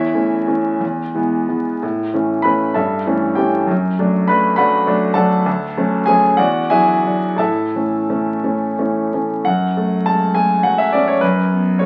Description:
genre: classical, romantic character piece for solo piano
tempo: 56-71 BPM (dotted quarters)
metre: 6/8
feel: rubato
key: A major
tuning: A4 = 440 Hz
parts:
  - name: clear concert grand piano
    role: solo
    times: 0.0-11.9 s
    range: D2 to B5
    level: -17 LUFS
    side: equal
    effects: none
room: moderate large studio reverb, RT60 1.0 s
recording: very old 78 rpm record, vinyl crackle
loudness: -17 LUFS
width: mono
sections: 0.0-9.5 A section; 9.5-11.9 B section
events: none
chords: 0.0 A/E; 0.8 E; 1.8 A; 2.8 A7/G; 3.7 D/F#; 5.5 Dmaj7; 6.4 E9; 7.4 A; 9.5 F#m; 11.2 N.C.

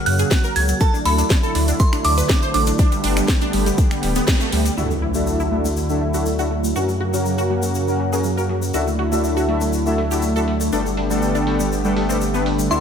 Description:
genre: progressive house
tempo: 121 BPM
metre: 4/4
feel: straight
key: D major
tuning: A4 = 444 Hz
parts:
  - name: glassy synth bell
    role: melody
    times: 0.0-4.2, 12.7-12.8 s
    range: A5 to G#6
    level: -23 LUFS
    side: right 1 dB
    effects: chorus, tremolo, ping-pong delay
  - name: lush unison pad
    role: sustained chords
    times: 0.0-12.8 s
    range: C#3 to G4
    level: -24 LUFS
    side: right 1 dB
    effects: chorus, sidechain pumping
  - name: wide unison pluck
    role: arpeggios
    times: 0.1-12.8 s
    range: F#3 to C5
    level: -24 LUFS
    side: right 1 dB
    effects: phaser, sidechain pumping, ping-pong delay
  - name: saturated sub bass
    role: bass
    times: 0.1-12.8 s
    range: D1 to F#2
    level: -23 LUFS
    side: equal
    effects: sidechain pumping
  - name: house drum kit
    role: drums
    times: 0.1-12.6 s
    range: finger snaps, hi-hat, snare drum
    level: -25 LUFS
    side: equal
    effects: sidechain pumping on hats, low-pass filter on hats, low-pass filter on snare
  - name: egg shaker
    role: percussion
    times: 0.2-12.8 s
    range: none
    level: -32 LUFS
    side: left 4 dB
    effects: none
  - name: electronic kick drum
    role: drums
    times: 0.3-4.4 s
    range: none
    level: -17 LUFS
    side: equal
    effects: none
  - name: soft supersaw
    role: stabs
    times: 4.8-12.8 s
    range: G3 to E5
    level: -23 LUFS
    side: left 2 dB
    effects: cassette tape, sidechain pumping, low-pass filter, ping-pong delay
  - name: impact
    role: sound effects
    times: 4.8-6.8 s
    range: none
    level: -29 LUFS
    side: equal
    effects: none
room: light reverb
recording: none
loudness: -17 LUFS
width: side -8 dB against mid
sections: 0.0-4.8 A section; 4.8-12.8 B section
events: filter sweep on synth pluck 0.0-4.8; filter sweep on analog synth pad 0.0-4.8; band accent 4.3; impact 4.8-6.8; filter sweep on drum 4.8-12.8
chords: 0.0 F#; 0.8 Dadd9; 2.8 Gadd9; 4.8 Dadd9; 6.8 F#; 8.7 Dadd9; 10.7 Gadd9

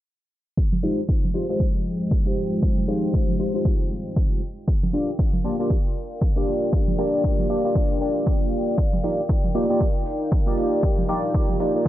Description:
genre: deep house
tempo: 117 BPM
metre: 4/4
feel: swing 59% on 16ths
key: F dorian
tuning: A4 = 439 Hz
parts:
  - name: dark analog pad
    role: sustained chords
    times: 1.3-11.9 s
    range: F3 to G5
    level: -31 LUFS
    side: left 1 dB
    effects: chorus, sidechain pumping
  - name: electronic kick drum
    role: drums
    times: 0.6-11.9 s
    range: none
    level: -22 LUFS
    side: equal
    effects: overdrive
  - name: congas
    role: percussion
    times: 0.7-11.6 s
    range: none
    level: -30 LUFS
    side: right 4 dB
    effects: none
  - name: chorused polysynth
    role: stabs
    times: 0.8-11.9 s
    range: Ab3 to D5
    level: -24 LUFS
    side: equal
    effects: sidechain pumping, tape echo
  - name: electronic hi-hat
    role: drums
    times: 9.0-11.7 s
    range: none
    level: -62 LUFS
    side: right 1 dB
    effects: overdrive
room: light reverb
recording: low-pass filter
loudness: -20 LUFS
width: side -13 dB against mid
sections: 0.6-11.9 A section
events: filter sweep 0.6-11.9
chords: 0.6 Fm9; 4.4 Gm7; 8.8 Ebmaj9

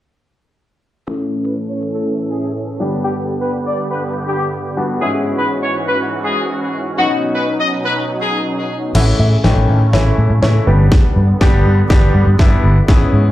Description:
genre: dance-pop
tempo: 122 BPM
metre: 4/4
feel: straight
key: unclear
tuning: A4 = 439 Hz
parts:
  - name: clear horn section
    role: melody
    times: 1.1-8.4 s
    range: F#4 to D#5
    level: -20 LUFS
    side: left 1 dB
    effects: low-pass filter, digital delay
  - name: warm baby grand piano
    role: accompaniment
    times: 1.1-13.3 s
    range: D#3 to A4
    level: -20 LUFS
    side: left 2 dB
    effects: sidechain pumping, low-pass filter
  - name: filtered supersaw swell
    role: sustained chords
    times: 1.1-13.3 s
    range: G2 to A4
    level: -21 LUFS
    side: right 1 dB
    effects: sidechain pumping, low-pass filter
  - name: vintage muted fingered electric bass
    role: bass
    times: 8.9-13.3 s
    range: G1 to A2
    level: -12 LUFS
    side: equal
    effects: sidechain pumping
  - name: house drum kit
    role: drums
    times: 8.9-13.0 s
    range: crash cymbal, kick drum, snare drum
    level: -14 LUFS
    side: equal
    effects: none
  - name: wide unison pluck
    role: melody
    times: 9.0-11.1 s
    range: B4 to F#5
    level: -24 LUFS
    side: right 1 dB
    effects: low-pass filter, digital delay
room: light reverb, digital ambience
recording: played on a big sound system in a bare room, large studio reverb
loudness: -13 LUFS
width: side -14 dB against mid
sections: 1.1-9.0 A section; 9.0-13.3 B section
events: filter sweep 1.1-9.0, 9.0-13.3; build-up 9.0-13.3; drum fill 9.0-13.3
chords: 1.1 A; 2.8 G; 5.0 E6/G#; 7.0 Badd9; 9.0 A; 10.7 G

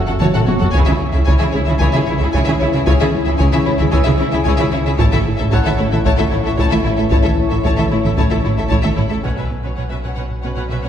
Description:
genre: cinematic, hybrid orchestral and electronic film score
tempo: 113 BPM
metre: 4/4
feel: straight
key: unclear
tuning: A4 = 440 Hz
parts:
  - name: analog drone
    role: sustained chords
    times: 0.0-10.9 s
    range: E3 to C#5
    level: -26 LUFS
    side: equal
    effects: chorus
  - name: dark French horn section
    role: sustained chords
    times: 0.0-8.9 s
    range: C#4 to A4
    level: -25 LUFS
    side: left 6 dB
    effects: none
  - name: plucky analog bass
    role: riff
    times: 0.0-10.9 s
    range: C#2 to B3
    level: -22 LUFS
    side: right 2 dB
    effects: none
  - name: warm sub bass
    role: bass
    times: 0.0-10.9 s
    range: F#1 to C#2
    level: -25 LUFS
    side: equal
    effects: none
  - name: felt-muted upright piano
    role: texture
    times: 0.0-10.9 s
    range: E5 to G#6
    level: -32 LUFS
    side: right 2 dB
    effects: digital delay
  - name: rich symphonic violin section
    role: melody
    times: 0.1-9.1 s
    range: C#5 to A5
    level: -24 LUFS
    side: left 4 dB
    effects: none
  - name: clear symphonic violin section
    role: second line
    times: 0.1-10.9 s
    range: E4 to F#5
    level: -25 LUFS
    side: left 3 dB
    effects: none
  - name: rich studio viola section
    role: accompaniment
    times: 0.1-10.9 s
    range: C#4 to B4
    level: -26 LUFS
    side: left 2 dB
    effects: none
  - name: rich symphonic cello section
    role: bass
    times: 0.1-10.9 s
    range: F#2 to C#3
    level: -24 LUFS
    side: right 2 dB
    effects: none
  - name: rich symphonic double bass section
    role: bass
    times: 0.2-9.0 s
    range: F#1 to C#2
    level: -24 LUFS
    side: right 2 dB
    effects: none
  - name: solo taiko drums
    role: drums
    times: 0.2-10.3 s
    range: none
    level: -18 LUFS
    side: equal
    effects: none
room: wet scoring stage reverb, RT60 1.7 s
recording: heard from further back in the room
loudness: -13 LUFS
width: side -9 dB against mid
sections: 0.0-9.2 A section; 9.2-10.9 B section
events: drum fill 0.2-0.7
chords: 0.0 F#m; 0.7 C#m; 5.0 A; 9.2 Bsus2

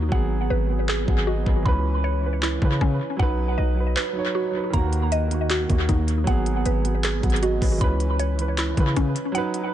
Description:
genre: hip hop, trap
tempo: 156 BPM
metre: 4/4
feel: half-time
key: unclear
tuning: A4 = 439 Hz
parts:
  - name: dark concert grand piano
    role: accompaniment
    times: 0.0-9.7 s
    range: Eb3 to Gb5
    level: -27 LUFS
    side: right 4 dB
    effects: low-pass filter, analog delay
  - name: mallet-like synth pluck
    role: arpeggios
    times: 0.0-9.7 s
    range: Db4 to Cb6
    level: -28 LUFS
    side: equal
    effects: chorus, phaser, low-pass filter, analog delay
  - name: distorted 808-style bass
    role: bass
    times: 0.0-9.1 s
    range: Ab1 to Db3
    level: -24 LUFS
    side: left 1 dB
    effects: distortion
  - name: trap drum kit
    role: drums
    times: 0.1-9.6 s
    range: handclaps, hi-hat, kick drum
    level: -25 LUFS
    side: equal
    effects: vintage 12-bit sampler grit, analog delay
room: digital ambience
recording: echo-heavy mix, nothing above 10.4 kHz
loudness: -20 LUFS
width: side -11 dB against mid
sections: 0.0-9.7 A section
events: break 0.0-4.7; kick muted 9.3-9.7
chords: 0.1 Abm7; 1.7 Dbm7; 3.2 B; 4.7 Ebm; 6.3 Abm7; 7.8 Dbm7

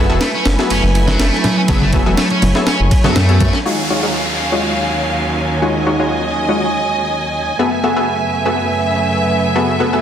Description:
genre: breakbeat, breaks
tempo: 122 BPM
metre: 4/4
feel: straight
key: unclear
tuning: A4 = 440 Hz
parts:
  - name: rich studio string section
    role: sustained chords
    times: 0.0-10.0 s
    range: Eb2 to Ab5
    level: -17 LUFS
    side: right 2 dB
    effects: sidechain pumping
  - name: orchestra-hit-like synth stab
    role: stabs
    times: 0.0-10.0 s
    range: Ab3 to Fb5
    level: -19 LUFS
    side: left 2 dB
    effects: built-in reverb, digital delay
  - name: dark detuned saw bass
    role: bass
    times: 0.0-3.5 s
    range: Fb1 to Gb2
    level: -15 LUFS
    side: equal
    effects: none
  - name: sludgy distorted guitar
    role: riff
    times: 0.2-3.6 s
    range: Gb3 to Db4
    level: -22 LUFS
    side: equal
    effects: overdrive, digital delay
  - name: breakbeat sampler-style drum kit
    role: drums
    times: 0.2-3.6 s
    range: kick drum, ride cymbal, snare drum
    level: -17 LUFS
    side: equal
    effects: none
  - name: congas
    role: percussion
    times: 1.1-3.5 s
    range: none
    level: -21 LUFS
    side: left 1 dB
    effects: none
  - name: downlifter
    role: sound effects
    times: 3.7-7.6 s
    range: none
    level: -23 LUFS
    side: equal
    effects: none
room: moderate digital room reverb, RT60 1.3 s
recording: dense, heavily limited modern master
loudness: -13 LUFS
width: side -9 dB against mid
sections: 0.0-3.7 A section; 3.7-10.0 B section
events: filter sweep on synth stab 3.7-10.0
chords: 0.0 Gbm11; 3.7 Ebm11; 7.6 Gbm11

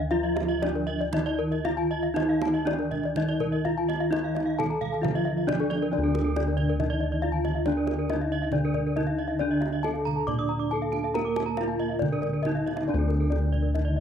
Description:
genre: Balinese gamelan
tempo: 117-138 BPM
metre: 4/4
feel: straight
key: D pelog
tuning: A4 = 441 Hz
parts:
  - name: gamelan-type bronze metallophone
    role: melody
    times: 0.0-14.0 s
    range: D4 to D5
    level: -29 LUFS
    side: equal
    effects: none
  - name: gamelan-type bronze metallophone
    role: accompaniment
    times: 0.0-14.0 s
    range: D3 to D4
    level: -34 LUFS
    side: right 3 dB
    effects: none
  - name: gamelan-type bronze metallophone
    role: arpeggios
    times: 0.0-14.0 s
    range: A4-30c to D6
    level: -32 LUFS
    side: left 9 dB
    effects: none
  - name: gamelan-type bossed gongs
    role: bass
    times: 0.0-14.0 s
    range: D2 to Bb4-20c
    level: -29 LUFS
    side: equal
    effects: none
  - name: gamelan-type bronze metallophone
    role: arpeggios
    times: 0.2-14.0 s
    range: A4-30c to Eb6+20c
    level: -35 LUFS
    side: right 8 dB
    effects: none
  - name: kendang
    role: percussion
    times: 0.4-13.9 s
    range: none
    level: -36 LUFS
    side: right 8 dB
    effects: none
room: small room ambience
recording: dry, close 1970s-style studio recording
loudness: -24 LUFS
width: side -8 dB against mid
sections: 0.0-5.9 A section; 5.9-14.0 B section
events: drum fill 12.6-12.9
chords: none

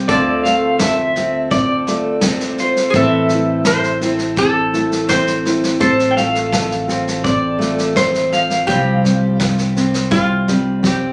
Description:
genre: acoustic folk duo or small band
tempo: 84 BPM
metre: 4/4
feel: straight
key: D minor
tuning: A4 = 440 Hz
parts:
  - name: metal-body resonator slide guitar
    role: second line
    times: 0.0-11.1 s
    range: F4 to C5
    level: -23 LUFS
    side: equal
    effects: none
  - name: fingerpicked steel-string acoustic guitar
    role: accompaniment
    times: 0.0-11.1 s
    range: D2 to F4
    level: -24 LUFS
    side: equal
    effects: none
  - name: dark upright piano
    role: arpeggios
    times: 0.0-11.1 s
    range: G3 to A4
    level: -22 LUFS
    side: equal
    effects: none
  - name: upright bass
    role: bass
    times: 0.0-11.1 s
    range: A1 to D2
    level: -28 LUFS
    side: equal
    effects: none
  - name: electric guitar through a small old amp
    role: melody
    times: 0.1-10.8 s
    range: C5 to G5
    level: -21 LUFS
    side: equal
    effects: tremolo
  - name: vintage brush drum kit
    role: drums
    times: 0.1-11.0 s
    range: kick drum, snare drum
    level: -25 LUFS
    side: equal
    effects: none
room: little or no reverb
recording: recorded on a phone in the room, studio reverb, compression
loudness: -16 LUFS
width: mono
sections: 0.0-11.1 A section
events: drum fill 10.8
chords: 0.1 Dm7; 3.0 Am; 5.8 F/A; 8.7 Csus4

